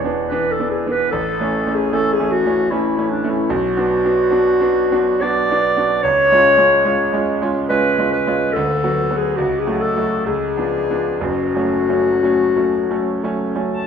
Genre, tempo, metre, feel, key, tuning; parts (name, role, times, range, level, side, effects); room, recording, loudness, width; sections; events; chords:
classical, romantic duo for clarinet and grand piano; 59-78 BPM; 3/4; rubato; F# minor; A4 = 440 Hz
mellow clarinet; melody; 0.0-13.9 s; D4 to A5; -17 LUFS; left 2 dB
bright concert grand piano; accompaniment; 0.0-13.9 s; E1 to F#4; -20 LUFS; right 2 dB
moderate scoring stage reverb, RT60 2.0 s; minimal, uncompressed stereo recording; -15 LUFS; side -7 dB against mid
0.0-13.9 A section
0.0 E7; 1.1 A; 3.5 Bm; 6.0 C#; 8.5 D6; 9.4 F#m/C#; 10.3 C#7b9; 11.2 F#m